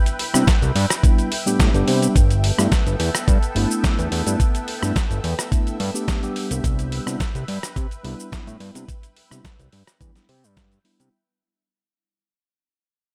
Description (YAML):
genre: nu-disco, nu disco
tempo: 107 BPM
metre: 4/4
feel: straight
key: unclear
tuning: A4 = 441 Hz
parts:
  - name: lush unison pad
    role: sustained chords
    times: 0.0-11.1 s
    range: B3 to G5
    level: -34 LUFS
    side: equal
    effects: chorus, phaser, sidechain pumping
  - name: dusty soul sampler-style drum kit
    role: drums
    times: 0.1-11.1 s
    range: hi-hat, rim click, shaker, snare drum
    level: -28 LUFS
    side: equal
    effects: studio reverb
  - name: mellow tine electric piano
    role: accompaniment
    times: 0.3-11.1 s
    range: G3 to G4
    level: -28 LUFS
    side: equal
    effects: none
  - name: fat analog bass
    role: bass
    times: 0.3-11.1 s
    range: G1 to C3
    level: -24 LUFS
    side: equal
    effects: none
  - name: electronic kick drum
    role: drums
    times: 0.5-10.7 s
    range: none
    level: -21 LUFS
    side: equal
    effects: studio reverb
room: digital ambience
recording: none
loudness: -20 LUFS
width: mono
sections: 0.0-11.1 A section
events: drop 0.0-11.1; fade-out 2.2-11.1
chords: 0.0 Cmaj7; 2.2 G69; 6.4 Cmaj7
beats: 0.47 1.04 1.60 | 2.16 2.72 3.28 3.84 | 4.40 4.96 5.52 6.08 | 6.64 7.20 7.76 8.32 | 8.89 9.45 10.01 10.57